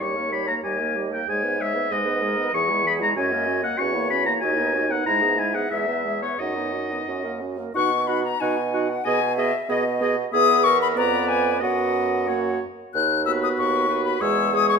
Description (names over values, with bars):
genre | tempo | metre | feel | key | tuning
quick classical-period movement for wind quintet | 94 BPM | 2/4 | rubato | B major | A4 = 440 Hz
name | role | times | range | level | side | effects
bright concert flute | melody | 0.0-14.8 s | G#4 to F#6 | -25 LUFS | left 8 dB | none
clear oboe | second line | 0.0-14.8 s | B4 to C#6 | -25 LUFS | left 3 dB | none
clear French horn | accompaniment | 0.0-14.8 s | E3 to D#4 | -31 LUFS | right 1 dB | none
clear clarinet | accompaniment | 0.0-14.8 s | D#4 to B4 | -28 LUFS | right 6 dB | none
warm bassoon | bass | 0.0-14.8 s | D#2 to B2 | -27 LUFS | right 4 dB | none
room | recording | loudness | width
moderate recital hall reverb, RT60 1.7 s | minimal, uncompressed stereo recording | -20 LUFS | side -5 dB against mid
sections
0.0-7.8 A section; 7.8-14.8 B section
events
none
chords
0.0 D#7; 1.3 G#m; 2.5 C#m/E; 3.2 F#; 3.8 F#7/E; 4.4 B/D#; 5.1 E/G#; 5.7 E; 6.4 B/F#; 7.1 F#; 7.8 B; 9.1 G#m/B; 10.3 E; 11.0 Fdim7; 11.6 B/F#; 12.3 F#; 12.9 B/D#; 14.2 C#m/E